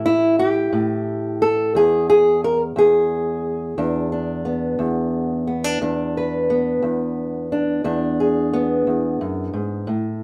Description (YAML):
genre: acoustic country blues, solo or duo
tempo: 59 BPM (dotted quarters)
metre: 12/8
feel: straight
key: E mixolydian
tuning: A4 = 440 Hz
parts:
  - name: fingerpicked old ladder-braced acoustic guitar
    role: solo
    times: 0.0-10.2 s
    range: E2 to B4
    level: -20 LUFS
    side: equal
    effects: none
room: moderate studio ambience, RT60 0.5 s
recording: heard from further back in the room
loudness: -20 LUFS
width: mono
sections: 0.0-10.2 A section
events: none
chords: 0.0 A7; 1.8 E7